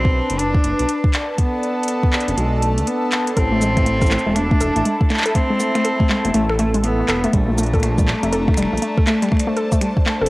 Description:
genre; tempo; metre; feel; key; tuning
IDM; 121 BPM; 4/4; swing 62% on 16ths; A minor; A4 = 440 Hz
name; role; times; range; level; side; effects
rich cello; melody; 0.0-10.3 s; G#3 to D4; -22 LUFS; equal; analog delay
phased analog pad; sustained chords; 0.0-10.3 s; D4 to Bb5; -25 LUFS; equal; phaser, chorus, vintage 12-bit sampler grit, sidechain pumping, cassette tape
dark detuned saw bass; bass; 0.0-10.3 s; E1 to D2; -21 LUFS; equal; none
electronic kick drum; drums; 0.0-10.0 s; none; -18 LUFS; equal; cassette tape
booming analog drum machine; drums; 0.3-10.3 s; cabasa, finger snaps, handclaps, hi-hat; -25 LUFS; equal; cassette tape
warbly dusty pluck; arpeggios; 3.4-10.3 s; G3 to A4; -21 LUFS; left 1 dB; chorus, cassette tape, tape echo
room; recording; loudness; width
light reverb; home recording on cassette; -16 LUFS; side -20 dB against mid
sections
0.0-10.3 A section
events
none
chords
0.0 Bm7; 3.4 Am; 7.3 Bbmaj7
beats
0.39 0.89 | 1.38 1.88 2.38 2.87 | 3.37 3.86 4.36 4.85 | 5.35 5.85 6.34 6.84 | 7.33 7.83 8.32 8.82 | 9.32 9.81

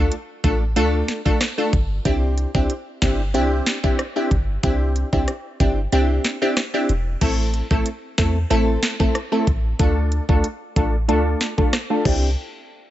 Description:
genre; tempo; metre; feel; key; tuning
dancehall; 93 BPM; 4/4; straight; C major; A4 = 442 Hz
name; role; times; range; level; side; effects
wavetable chord stab; accompaniment; 0.0-12.3 s; A3 to A4; -22 LUFS; equal; sidechain pumping, low-pass filter
clean 808-style bass; bass; 0.0-12.4 s; E1 to E2; -21 LUFS; equal; none
island pop drum kit; drums; 0.1-12.2 s; crash cymbal, hi-hat, kick drum, rim click, snare drum; -22 LUFS; equal; overdrive
room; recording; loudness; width
digital ambience; nothing above 7.8 kHz; -18 LUFS; side -13 dB against mid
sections
0.0-7.2 A section; 7.2-12.4 B section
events
kick muted 5.9-7.2; filter sweep on synth stab 7.2-12.4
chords
0.0 Dm; 2.1 Cadd9; 7.2 Am; 9.8 Dm; 12.1 Cadd9; 12.4 N.C.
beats
0.12 0.76 1.41 | 2.05 2.70 3.34 3.99 | 4.63 5.28 5.92 6.57 | 7.21 7.86 8.51 9.15 | 9.79 10.44 11.09 11.73

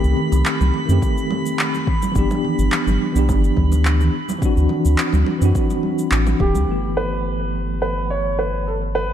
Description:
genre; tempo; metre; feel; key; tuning
sunset chillout; 106 BPM; 4/4; straight; unclear; A4 = 444 Hz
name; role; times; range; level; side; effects
bell-like tine electric piano; accompaniment; 0.0-9.1 s; Eb3 to G4; -22 LUFS; moving between left 5 dB and right 3 dB; fast stereo tremolo, auto-pan, tape echo
round analog bass; bass; 0.0-9.1 s; D1 to F#2; -19 LUFS; equal; none
electronic cabasa and handclaps; drums; 0.0-9.1 s; none; -26 LUFS; equal; low-pass filter on perc, low-pass filter on snare, low-pass filter on room
drifting glass-harmonics texture; texture; 0.0-6.7 s; B5; -31 LUFS; right 2 dB; chorus, built-in reverb
congas; percussion; 0.2-6.7 s; none; -28 LUFS; right 4 dB; none
electronic kick drum; drums; 1.0-6.5 s; none; -21 LUFS; equal; overdrive
dark grand piano; melody; 6.4-9.1 s; G4 to C#5; -22 LUFS; right 2 dB; tape echo
room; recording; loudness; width
light reverb; dark, warm production, faint mains hum; -16 LUFS; side -10 dB against mid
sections
0.0-6.7 A section; 6.7-9.1 B section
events
filter sweep on tine electric piano 0.0-6.7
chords
0.0 Cm6; 1.9 G6; 4.1 D9; 6.7 G69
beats
0.46 1.02 1.59 | 2.15 2.72 3.29 3.85 | 4.42 4.99 5.55 6.12 | 6.68 7.25 7.82 8.38 | 8.95

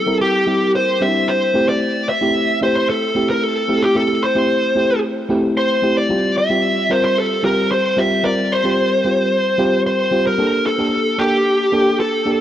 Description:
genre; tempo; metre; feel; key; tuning
pop; 112 BPM; 4/4; straight; F major; A4 = 439 Hz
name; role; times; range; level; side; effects
smooth overdriven lead guitar; melody; 0.0-12.4 s; G4 to E5; -16 LUFS; equal; cassette tape
FM electric piano with auto-pan; accompaniment; 0.0-12.4 s; G3 to Bb4; -19 LUFS; equal; cassette tape
room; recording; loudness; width
moderate lush hall reverb, RT60 3.1 s; home recording on cassette; -14 LUFS; side -11 dB against mid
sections
0.0-12.4 A section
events
none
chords
0.0 C; 1.5 Am7; 6.1 Fsus2; 10.4 Gmadd9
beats
0.21 0.74 1.28 | 1.82 2.35 2.89 3.42 | 3.96 4.50 5.03 5.57 | 6.10 6.64 7.17 7.71 | 8.24 8.78 9.32 9.85 | 10.39 10.92 11.46 11.99

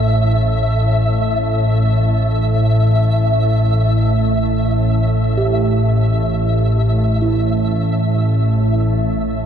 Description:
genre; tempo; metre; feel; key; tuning
dark ambient drone; free time; none; none; unclear; A4 = 440 Hz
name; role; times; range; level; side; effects
organ-like drone; drone; 0.0-9.5 s; A1 to A2; -14 LUFS; equal; ensemble chorus, built-in reverb
flickering grainy texture; texture; 0.0-9.5 s; E5; -23 LUFS; equal; built-in reverb
gamelan-type bossed gongs; arpeggios; 5.4-9.5 s; E4 to G4; -25 LUFS; right 5 dB; ping-pong delay
room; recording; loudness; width
moderate huge ambient reverb, RT60 7.7 s; dark, warm production; -14 LUFS; side -8 dB against mid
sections
0.0-9.5 A section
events
none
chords
0.0 A5; 1.4 Em/A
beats
free time

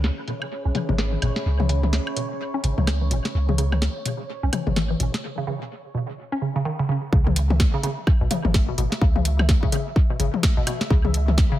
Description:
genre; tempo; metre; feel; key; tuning
minimal techno; 127 BPM; 4/4; swing 60% on 16ths; C# minor; A4 = 440 Hz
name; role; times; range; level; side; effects
punchy sub bass; bass; 0.0-11.4 s; G#1 to C#2; -22 LUFS; equal; sidechain pumping
booming analog drum machine; drums; 0.0-11.5 s; hi-hat, snare drum; -28 LUFS; right 1 dB; low-pass filter on hats, low-pass filter on snare, low-pass filter on cymbals, dub echo
bubbling stepped-filter texture; texture; 0.0-11.6 s; C#5 to E5; -37 LUFS; equal; chorus, built-in reverb, sidechain pumping
warbly tape-like pad; texture; 0.0-5.2 s; C#4 to B5; -35 LUFS; right 1 dB; chorus, built-in reverb, sidechain pumping
hollow square pluck; riff; 0.3-11.6 s; B2 to C#4; -27 LUFS; equal; chorus, phaser, cassette tape, sidechain pumping, tape echo
electronic woodblock and toms; percussion; 0.4-11.4 s; none; -29 LUFS; left 5 dB; analog delay
electronic kick drum; drums; 7.1-11.5 s; none; -19 LUFS; equal; none
room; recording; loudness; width
digital ambience; echo-heavy mix; -20 LUFS; side -14 dB against mid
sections
0.0-7.1 A section; 7.1-11.6 B section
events
filter sweep on synth arpeggio sound 0.0-7.1; break 5.2-7.1; drop 7.1-11.6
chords
0.0 C#m7; 7.1 C#m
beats
0.04 0.51 0.98 | 1.46 1.93 2.40 2.87 | 3.35 3.82 4.29 4.76 | 5.24 5.71 6.18 6.65 | 7.13 7.60 8.07 8.54 | 9.02 9.49 9.96 10.43 | 10.90 11.38

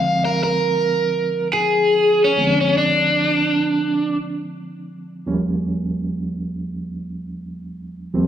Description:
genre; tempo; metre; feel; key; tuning
blues; free time; none; none; Bb mixolydian; A4 = 443 Hz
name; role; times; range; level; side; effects
overdriven electric guitar; melody; 0.0-4.2 s; Db4 to F5; -16 LUFS; equal; phaser, slapback echo
reed electric piano; accompaniment; 0.0-8.3 s; Eb2 to Db4; -24 LUFS; right 1 dB; fast tremolo
room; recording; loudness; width
moderate lush hall reverb, RT60 2.9 s; live gig heard through the venue's PA, club reverb; -17 LUFS; side -9 dB against mid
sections
0.0-8.3 A section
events
none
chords
0.0 Bb7; 5.3 Eb7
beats
free time

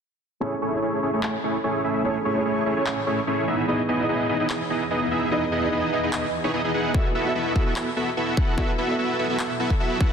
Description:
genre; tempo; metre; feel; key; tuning
future bass; 147 BPM; 4/4; half-time; unclear; A4 = 439 Hz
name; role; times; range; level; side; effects
felt-muted upright piano; accompaniment; 0.4-10.1 s; A3 to E5; -29 LUFS; right 1 dB; sidechain pumping, low-pass filter, ping-pong delay
shimmering ambient pad; sustained chords; 1.6-10.1 s; E2 to E5; -32 LUFS; equal; chorus, built-in reverb, sidechain pumping
dense compressed supersaw; riff; 0.4-10.1 s; A3 to F#5; -24 LUFS; equal; cassette tape, sidechain pumping, low-pass filter, ping-pong delay
electronic handclaps; drums; 1.2-9.5 s; none; -33 LUFS; left 1 dB; low-pass filter on snare
electronic kick drum; drums; 6.9-10.1 s; none; -22 LUFS; equal; none
room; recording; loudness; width
moderate lush hall reverb, RT60 2.1 s; dense, heavily limited modern master; -21 LUFS; side -7 dB against mid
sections
0.4-10.1 A section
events
filter sweep on supersaw synth 0.4-10.1; filter sweep on felt piano 0.4-10.1; filter sweep on ambient pad 0.4-10.1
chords
0.4 Amaj7; 3.5 Emaj7; 6.9 B7sus4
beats
| 0.41 0.82 1.23 1.64 | 2.05 2.45 2.86 3.27 | 3.68 4.09 4.50 4.90 | 5.31 5.72 6.13 6.54 | 6.94 7.35 7.76 8.17 | 8.58 8.98 9.39 9.80

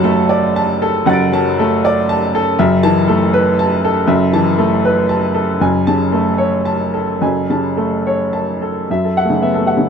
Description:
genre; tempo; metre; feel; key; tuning
neoclassical minimalist piano; 105-122 BPM; 3/4; rubato; F# minor; A4 = 440 Hz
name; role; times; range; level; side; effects
clear baby grand piano; solo; 0.0-9.9 s; F#1 to D7; -12 LUFS; equal; none
room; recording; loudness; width
light reverb; close, detailed microphones; -13 LUFS; side -6 dB against mid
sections
0.0-8.9 A section; 8.9-9.9 B section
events
none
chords
0.0 D/F#; 2.6 Asus2/F#; 5.6 F#madd9; 8.9 F#m7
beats
0.04 0.56 | 1.07 1.59 2.09 | 2.59 3.09 3.59 | 4.10 4.60 5.11 | 5.63 6.14 6.66 | 7.21 7.77 8.32 | 8.88 9.41

